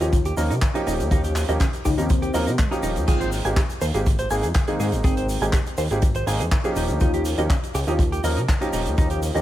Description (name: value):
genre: nu-disco, nu disco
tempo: 122 BPM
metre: 4/4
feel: straight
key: Ab major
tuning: A4 = 439 Hz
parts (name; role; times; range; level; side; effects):
- soft octave-layered synth lead; melody; 0.0-8.0 s; C4 to F4; -30 LUFS; left 2 dB; chorus, phaser, ping-pong delay
- warm grand piano; accompaniment; 0.0-9.4 s; F3 to G5; -27 LUFS; right 1 dB; sidechain pumping, ping-pong delay
- direct-recorded clean electric guitar; riff; 0.0-9.4 s; Db4 to Ab5; -30 LUFS; right 2 dB; wide subtle chorus
- fat analog bass; bass; 0.0-9.4 s; Eb1 to C3; -25 LUFS; equal; none
- vintage drum kit; drums; 0.0-9.4 s; crash cymbal, handclaps, hi-hat, shaker; -31 LUFS; right 1 dB; none
- tube shaker; percussion; 0.0-9.4 s; none; -43 LUFS; left 3 dB; none
- kick drum; drums; 0.1-9.1 s; none; -21 LUFS; equal; none
room: small room ambience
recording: none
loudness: -19 LUFS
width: side -13 dB against mid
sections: 0.0-9.4 A section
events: none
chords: 0.0 Eb7; 3.1 Abmaj7; 6.8 Eb7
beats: 0.13 0.62 | 1.11 1.60 2.10 2.59 | 3.08 3.57 4.06 4.55 | 5.04 5.54 6.03 6.52 | 7.01 7.50 8.00 8.49 | 8.98